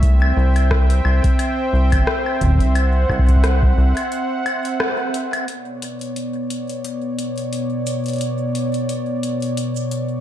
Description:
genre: IDM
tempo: 88 BPM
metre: 4/4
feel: swing 56% on 16ths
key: unclear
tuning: A4 = 440 Hz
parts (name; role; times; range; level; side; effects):
- warm analog pad; sustained chords; 0.0-10.2 s; B2 to G5; -22 LUFS; right 1 dB; chorus
- rubbery square bass; bass; 0.0-3.9 s; G1 to C2; -15 LUFS; equal; tube saturation
- booming analog drum machine; drums; 0.0-10.1 s; hi-hat, rim click, shaker, woodblock; -26 LUFS; left 2 dB; digital delay
- electronic kick drum; drums; 0.0-3.7 s; none; -18 LUFS; equal; none
room: light reverb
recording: dark, warm production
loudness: -17 LUFS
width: side -11 dB against mid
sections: 0.0-5.5 A section; 5.5-10.2 B section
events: break 4.1-5.5; band accent 4.8-5.1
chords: 0.0 C; 5.5 Bmadd9

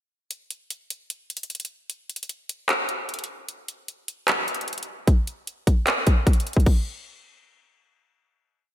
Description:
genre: hip hop, trap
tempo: 151 BPM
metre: 4/4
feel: half-time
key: none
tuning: none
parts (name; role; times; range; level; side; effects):
- trap drum kit; drums; 0.3-6.8 s; crash cymbal, handclaps, hi-hat, kick drum; -21 LUFS; equal; none
room: light reverb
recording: bright 1980s-style digital production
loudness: -22 LUFS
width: side -12 dB against mid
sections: 0.3-6.7 breakdown; 6.7-8.7 final hit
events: none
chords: none

